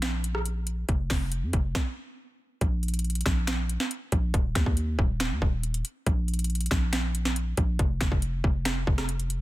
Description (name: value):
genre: hip hop, trap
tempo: 139 BPM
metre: 4/4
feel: half-time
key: unclear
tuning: A4 = 439 Hz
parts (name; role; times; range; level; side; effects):
- growling 808-style bass; bass; 0.0-9.4 s; Eb1 to F2; -28 LUFS; equal; none
- trap drum kit; drums; 0.0-9.4 s; finger snaps, hi-hat, kick drum, rim click, snare drum; -27 LUFS; equal; overdrive
room: little or no reverb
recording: dense, heavily limited modern master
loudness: -25 LUFS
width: side -17 dB against mid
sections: 0.0-2.6 A section; 2.6-9.4 B section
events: stop 1.8-2.6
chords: none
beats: 0.02 0.46 | 0.89 1.32 1.75 2.18 | 2.61 3.04 3.48 3.91 | 4.34 4.77 5.20 5.63 | 6.07 6.50 6.93 7.36 | 7.79 8.22 8.66 9.09